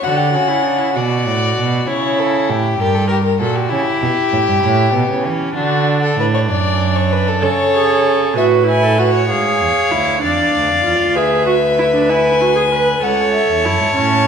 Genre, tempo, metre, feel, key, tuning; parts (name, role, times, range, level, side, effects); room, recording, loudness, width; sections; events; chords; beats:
classical, baroque-style fugue for string quartet; 65 BPM (dotted quarters); 12/8; straight; D major; A4 = 440 Hz
warm violin; melody; 0.0-14.3 s; F#4 to A5; -18 LUFS; left 6 dB
rich violin; second line; 0.0-14.3 s; B3 to D5; -18 LUFS; left 1 dB
warm cello; bass; 0.0-14.3 s; C#2 to E3; -18 LUFS; right 4 dB
warm viola; accompaniment; 7.4-14.3 s; C#4 to B4; -17 LUFS; right 5 dB
wet scoring stage reverb, RT60 1.4 s; minimal, uncompressed stereo recording; -13 LUFS; side -7 dB against mid
0.0-14.3 A section
0.0 D; 1.9 C#dim7; 3.7 A7; 5.6 D; 7.4 A/C#; 9.3 E13b9; 11.2 E7/D; 13.0 A/C#
| 0.04 0.96 1.88 2.79 | 3.71 4.63 5.56 6.49 | 7.42 8.36 9.30 10.23 | 11.16 12.09 13.03 13.96